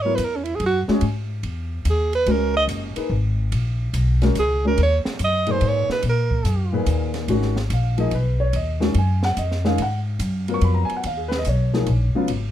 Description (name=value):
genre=modal jazz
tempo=144 BPM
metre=3/4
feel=swing 67% on 8ths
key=G# dorian from 7.3 s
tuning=A4 = 445 Hz
part: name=clear alto saxophone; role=melody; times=0.0-6.7 s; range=C#4 to D#5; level=-22 LUFS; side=right 3 dB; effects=none
part: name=warm baby grand piano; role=accompaniment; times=0.0-12.5 s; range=A#2 to C#6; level=-23 LUFS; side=left 2 dB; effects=none
part: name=upright bass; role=bass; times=0.0-12.5 s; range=F#1 to A#2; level=-21 LUFS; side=equal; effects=none
part: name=open jazz drum kit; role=drums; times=0.2-12.4 s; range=hi-hat, kick drum, ride cymbal, snare drum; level=-33 LUFS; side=right 2 dB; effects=none
room=little or no reverb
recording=dark, warm production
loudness=-19 LUFS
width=side -11 dB against mid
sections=0.0-7.3 A section; 7.3-12.5 A section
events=alto saxophone solo 0.0-7.3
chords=0.0 C#madd9 (rootless); 2.3 D#m7; 7.3 G#m9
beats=0.19 0.61 | 1.03 1.45 1.86 | 2.28 2.70 3.11 | 3.53 3.95 4.37 | 4.78 5.20 5.62 | 6.04 6.45 6.87 | 7.29 7.71 8.12 | 8.54 8.96 9.38 | 9.79 10.21 10.63 | 11.04 11.46 11.88 | 12.30